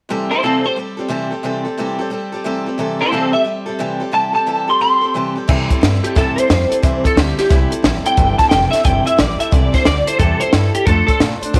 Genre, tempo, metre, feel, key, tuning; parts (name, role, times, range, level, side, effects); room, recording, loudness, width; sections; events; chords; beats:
rockabilly; 178 BPM; 4/4; swing 64% on 8ths; C major; A4 = 440 Hz
picked steel-string acoustic guitar; accompaniment; 0.1-11.6 s; C3 to C5; -23 LUFS; equal
electric guitar at the edge of break-up; melody; 0.3-0.8, 3.0-11.2 s; C4 to C6; -18 LUFS; equal; ensemble chorus, tape echo
upright bass; bass; 5.5-11.6 s; F1 to C3; -21 LUFS; equal
compact cocktail drum kit; drums; 5.5-11.6 s; crash cymbal, hi-hat, kick drum, snare drum; -18 LUFS; equal
light reverb; -16 LUFS; mono
0.1-5.5 A section; 5.5-11.6 B section
0.1 C6; 10.9 F6
| 0.10 0.44 0.78 1.11 | 1.45 1.78 2.12 2.46 | 2.79 3.13 3.47 3.81 | 4.14 4.48 4.82 5.15 | 5.49 5.83 6.16 6.50 | 6.83 7.17 7.51 7.84 | 8.18 8.52 8.85 9.19 | 9.52 9.86 10.20 10.53 | 10.87 11.20 11.54